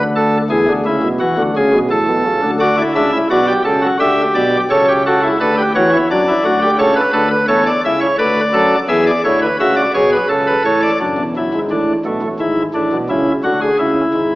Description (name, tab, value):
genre	classical, baroque-style 3-part fugue for pipe organ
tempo	86 BPM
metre	3/4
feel	straight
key	D major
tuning	A4 = 440 Hz
part	pipe organ, cornet	solo	0.0-14.4 s	E1 to E5	-12 LUFS	equal	none
room	wet recital hall reverb, RT60 1.4 s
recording	AM radio sound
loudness	-12 LUFS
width	side -18 dB against mid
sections	0.0-11.0 A section; 11.0-14.4 B section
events	none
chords	0.0 Bm7/D (rootless); 0.5 E; 1.9 A; 2.6 D; 4.0 Em7/D; 4.7 A/C#; 6.1 D/F#; 6.8 A/C#; 8.2 Bm7/D; 8.9 E; 10.3 A/C#; 11.0 D; 12.4 G#dim; 13.1 C#m